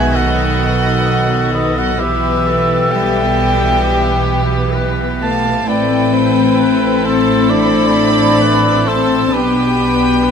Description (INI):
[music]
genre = cinematic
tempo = 65 BPM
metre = 4/4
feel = rubato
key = A minor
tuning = A4 = 444 Hz
[part]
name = warm studio violin section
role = melody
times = 0.0-10.3 s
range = F#4 to A4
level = -24 LUFS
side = left 4 dB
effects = none
[part]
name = clear clarinet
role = second line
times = 0.0-10.3 s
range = G4 to D5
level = -22 LUFS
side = left 2 dB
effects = none
[part]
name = warm cor anglais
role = second line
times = 0.0-10.3 s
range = B4 to A5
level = -19 LUFS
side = right 3 dB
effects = none
[part]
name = warm studio violin section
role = second line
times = 0.0-10.3 s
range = B4 to B5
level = -22 LUFS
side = left 2 dB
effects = none
[part]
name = warm studio viola section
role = accompaniment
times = 0.0-10.3 s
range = D#3 to E4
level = -20 LUFS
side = equal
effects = none
[part]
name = mellow French horn section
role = sustained chords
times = 0.0-10.3 s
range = D#3 to D4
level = -18 LUFS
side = left 8 dB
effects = none
[part]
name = dark studio double bass section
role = bass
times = 0.0-10.3 s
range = A1 to B1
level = -21 LUFS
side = right 3 dB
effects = none
[part]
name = warm chamber cello section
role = bass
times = 0.0-10.3 s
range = A2 to B2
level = -20 LUFS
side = right 4 dB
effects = none
[sound]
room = moderate scoring stage reverb, RT60 1.8 s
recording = none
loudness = -11 LUFS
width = side -7 dB against mid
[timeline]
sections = 0.0-10.3 A section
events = none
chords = 0.0 B7; 2.0 Em/B; 5.7 Am; 9.3 G/B